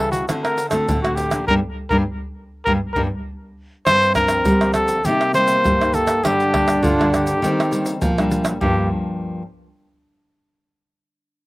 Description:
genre	samba and choro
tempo	101 BPM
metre	4/4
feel	straight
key	G minor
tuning	A4 = 441 Hz
part	breathy trumpet	melody	0.0-8.9 s	F4 to C5	-19 LUFS	equal	none
part	nylon-string guitar	accompaniment	0.0-9.4 s	G2 to F#4	-25 LUFS	left 2 dB	none
part	nylon-string guitar	bass	0.0-8.9 s	G2 to G3	-24 LUFS	equal	none
part	tube shaker, surdo, pandeiro and tamborim	percussion	0.1-8.8 s	none	-24 LUFS	right 1 dB	none
part	breathy trombone	second line	3.9-8.9 s	Bb3 to D4	-24 LUFS	right 2 dB	none
room	light reverb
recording	recorded outdoors, with no room sound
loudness	-16 LUFS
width	side -20 dB against mid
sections	0.0-3.9 A section; 3.9-8.6 B section; 8.6-11.0 C section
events	band accent 1.5-3.9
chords	0.3 D7; 1.5 Gm; 3.9 Gm7; 5.1 Cm7; 6.2 Gm; 7.4 Ebmaj7; 8.6 Gm7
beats	0.29 0.89 | 1.49 2.08 2.68 3.27 | 3.87 4.46 5.05 5.65 | 6.24 6.83 7.42 8.02 | 8.61 9.20

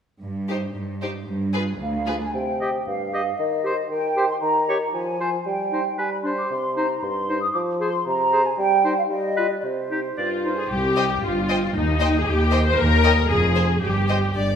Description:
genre	cinematic, playful, whimsical film cue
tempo	115 BPM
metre	2/4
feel	straight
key	C minor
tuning	A4 = 440 Hz
part	rich studio cello section	bass	0.2-2.2, 10.7-14.6 s	C2 to G2	-25 LUFS	right 1 dB	none
part	rich symphonic violin section	melody	0.5-2.1, 11.0-14.2 s	B4 to Ab5	-33 LUFS	left 1 dB	none
part	rich chamber violin section	second line	0.5-2.1, 11.0-14.6 s	G4 to Eb5	-29 LUFS	left 3 dB	none
part	rich symphonic viola section	accompaniment	0.5-2.1, 10.2-14.3 s	Eb4 to C5	-22 LUFS	left 3 dB	none
part	mellow large flute ensemble	second line	1.8-10.4 s	C5 to Eb6	-24 LUFS	right 1 dB	none
part	dark bassoon	accompaniment	2.3-10.6 s	G2 to G3	-27 LUFS	equal	none
part	clear clarinet	second line	2.6-10.5 s	D4 to Ab4	-32 LUFS	left 2 dB	none
part	clear oboe	second line	2.6-10.7 s	G4 to Eb5	-30 LUFS	right 1 dB	none
part	clear chamber double bass section	bass	10.7-14.6 s	F1 to Eb2	-23 LUFS	right 1 dB	none
room	wet recital hall reverb, RT60 1.7 s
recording	none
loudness	-20 LUFS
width	side -7 dB against mid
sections	0.2-2.3 A section; 2.3-10.7 B section; 10.7-14.6 B section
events	none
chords	0.2 Cm/G (rootless); 1.3 G7(no3); 2.3 C5; 3.4 Cm/Eb; 4.9 Fm; 5.5 N.C.; 6.5 Cm; 7.5 Fm; 8.6 N.C.; 9.6 C5; 11.7 Cm/Eb (rootless); 12.8 Eb5; 13.3 Fm; 13.8 N.C.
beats	| 0.24 0.76 | 1.28 1.80 | 2.33 2.86 | 3.38 3.90 | 4.42 4.93 | 5.46 5.98 | 6.51 7.03 | 7.55 8.07 | 8.58 9.11 | 9.64 10.17 | 10.70 11.23 | 11.75 12.27 | 12.78 13.30 | 13.82 14.35

